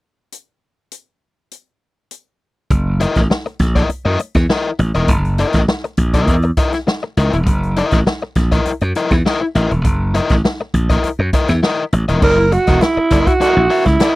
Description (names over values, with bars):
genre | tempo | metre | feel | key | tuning
funk | 101 BPM | 4/4 | straight | F# mixolydian | A4 = 440 Hz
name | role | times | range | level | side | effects
swinging big-band drum kit | drums | 0.3-14.2 s | crash cymbal, hi-hat, kick drum, snare drum | -17 LUFS | equal | none
glassy slap bass | bass | 2.7-14.0 s | E1 to F#2 | -16 LUFS | equal | none
crunchy overdriven guitar | accompaniment | 3.0-14.2 s | E4 to E5 | -18 LUFS | left 4 dB | harmonic tremolo
growling alto saxophone | melody | 12.2-14.2 s | E4 to A#4 | -13 LUFS | right 2 dB | none
room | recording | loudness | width
little or no reverb | dry, close 1970s-style studio recording | -13 LUFS | side -19 dB against mid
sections
0.3-2.7 A section; 2.7-12.2 B section; 12.2-14.2 C section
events
none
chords
0.3 N.C.; 2.7 F#6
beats
| 0.33 0.92 1.52 2.11 | 2.71 3.30 3.90 4.50 | 5.09 5.68 6.28 6.87 | 7.47 8.06 8.66 9.25 | 9.85 10.44 11.03 11.63 | 12.22 12.81 13.41 14.00